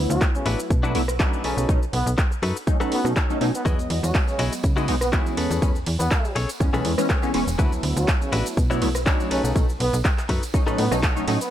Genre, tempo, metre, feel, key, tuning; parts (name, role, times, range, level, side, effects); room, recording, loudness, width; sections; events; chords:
filtered disco house; 122 BPM; 4/4; swing 53% on 16ths; A4 = 439 Hz
funky polysynth comp; accompaniment; 0.0-11.4 s; E3 to D#5; -26 LUFS; equal; chorus, phaser, sidechain pumping
slap-like FM bass; bass; 0.0-11.4 s; E1 to C#3; -25 LUFS; equal; tube saturation, sidechain pumping
clear horn section; melody; 0.1-11.5 s; C#3 to F#4; -29 LUFS; right 1 dB; sidechain pumping, ping-pong delay
punchy analog drum machine; drums; 0.1-11.5 s; cabasa, handclaps, hi-hat, ride cymbal, rim click; -29 LUFS; right 1 dB; sidechain pumping on hats, sidechain pumping on perc, sidechain pumping on cymbals
direct-recorded clean electric guitar; riff; 0.2-11.3 s; C#4 to E5; -30 LUFS; left 4 dB; sidechain pumping
electronic kick drum; drums; 0.2-11.1 s; -22 LUFS; equal
tambourine; percussion; 3.7-11.5 s; -43 LUFS; right 8 dB; sidechain pumping on perc
little or no reverb; -20 LUFS; side -11 dB against mid
0.0-11.5 A section
0.0 D69; 1.4 B7; 3.7 Emaj9; 5.4 Amaj9; 7.6 D69; 9.3 B7